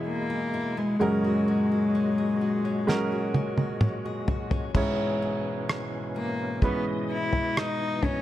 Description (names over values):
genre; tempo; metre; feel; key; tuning
pop ballad; 64 BPM; 4/4; straight; unclear; A4 = 440 Hz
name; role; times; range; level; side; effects
clear baby grand piano; accompaniment; 0.0-8.2 s; E2 to C#5; -31 LUFS; right 2 dB; none
bright tonewheel organ; sustained chords; 0.0-8.2 s; A#2 to D#5; -35 LUFS; equal; overdrive, chorus vibrato, fast rotary speaker
picked steel-string acoustic guitar; arpeggios; 0.0-8.2 s; G#2 to G#4; -35 LUFS; left 5 dB; none
warm cello; melody; 0.1-8.2 s; G#3 to E4; -27 LUFS; left 2 dB; none
damped 70s drum kit; drums; 2.9-8.2 s; crash cymbal, kick drum, rim click, snare drum, toms; -27 LUFS; equal; none
room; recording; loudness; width
light reverb, small room ambience; none; -24 LUFS; side -13 dB against mid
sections
0.0-4.8 A section; 4.8-8.2 B section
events
drum fill 2.9-4.8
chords
0.0 E; 1.0 F#add9; 4.8 C#m7/G#